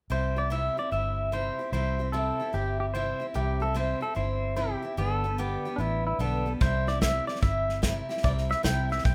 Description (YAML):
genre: honky-tonk and classic country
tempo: 148 BPM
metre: 4/4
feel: swing 65% on 8ths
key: C major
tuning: A4 = 439 Hz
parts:
  - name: pedal steel guitar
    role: melody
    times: 0.1-9.1 s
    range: D4 to G5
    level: -33 LUFS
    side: equal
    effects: none
  - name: picked steel-string acoustic guitar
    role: accompaniment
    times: 0.1-9.1 s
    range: G2 to G4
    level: -35 LUFS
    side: equal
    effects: none
  - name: vintage muted fingered electric bass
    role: bass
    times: 0.1-9.1 s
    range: G1 to C2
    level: -32 LUFS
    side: equal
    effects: none
  - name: natural country drum kit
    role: drums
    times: 6.6-9.1 s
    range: hi-hat, kick drum, snare drum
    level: -30 LUFS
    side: equal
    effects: none
room: moderate studio reverb, RT60 0.6 s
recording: none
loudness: -28 LUFS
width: mono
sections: 0.1-9.1 A section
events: none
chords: 0.1 C; 5.0 G; 6.6 C